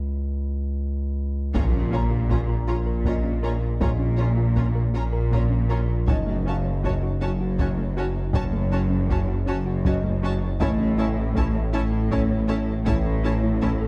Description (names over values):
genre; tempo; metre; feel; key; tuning
cinematic, hybrid orchestral and electronic film score; 53 BPM (dotted quarters); 6/8; straight; Bb harmonic minor; A4 = 440 Hz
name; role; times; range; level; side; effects
saturated sub bass; bass; 0.0-13.9 s; Gb1 to Db2; -30 LUFS; equal; none
felt-muted upright piano; texture; 0.0-13.9 s; C#4 to Bb5; -40 LUFS; equal; tape echo
rich studio violin section; second line; 1.5-13.7 s; Db5 to Bb5; -39 LUFS; equal; none
rich symphonic viola section; accompaniment; 1.5-13.7 s; Db4 to Gb4; -36 LUFS; equal; none
thumb-piano-like synth pluck; arpeggios; 1.5-13.9 s; Gb3 to Bb4; -35 LUFS; equal; chorus, tape echo
rich symphonic cello section; bass; 1.5-13.9 s; Gb2 to Bb2; -29 LUFS; equal; none
taiko ensemble; drums; 1.5-13.9 s; none; -29 LUFS; equal; none
impact; sound effects; 1.5-3.8 s; none; -32 LUFS; equal; none
clear symphonic double bass section; bass; 1.6-13.9 s; Gb1 to Bb1; -29 LUFS; equal; none
room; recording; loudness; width
light reverb; dark, warm production; -24 LUFS; mono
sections
0.0-1.5 A section; 1.5-13.9 B section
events
break 0.0-1.5; drum fill 1.0-1.5; impact 1.5-3.8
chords
0.0 N.C.; 1.5 Bbm; 6.1 Gbm; 10.6 A